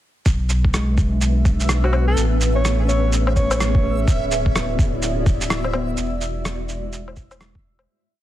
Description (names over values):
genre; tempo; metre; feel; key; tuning
future garage; 126 BPM; 4/4; swing 62% on 16ths; B dorian; A4 = 441 Hz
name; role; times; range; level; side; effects
granular cloud pad; sustained chords; 0.9-7.9 s; G#3 to D5; -28 LUFS; left 2 dB; built-in reverb, sidechain pumping
warm sub bass; bass; 0.3-7.9 s; D1 to B1; -21 LUFS; equal; sidechain pumping
electronic kick drum; drums; 0.3-7.6 s; none; -18 LUFS; equal; overdrive, studio reverb
electronic shaker, rim click and woodblock; drums; 0.3-7.9 s; none; -25 LUFS; equal; overdrive, studio reverb
backwards swelling texture; texture; 1.3-7.9 s; E5; -32 LUFS; right 3 dB; built-in reverb
muted felt-like synth keys; accompaniment; 0.7-6.2 s; G#3 to C#4; -28 LUFS; left 2 dB; chorus, sidechain pumping, analog delay
breathy alto saxophone; melody; 1.8-4.0 s; F#4 to C#5; -26 LUFS; right 1 dB; analog delay
room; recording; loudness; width
little or no reverb; dense, heavily limited modern master, cassette tape; -17 LUFS; side -13 dB against mid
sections
0.3-7.9 groove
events
fade-out 5.3-7.9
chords
0.3 Bm; 2.2 Amaj9; 4.1 D69; 6.0 E9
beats
| 0.26 0.74 1.22 1.69 | 2.17 2.65 3.12 3.60 | 4.07 4.55 5.03 5.50 | 5.98 6.45 6.93 7.41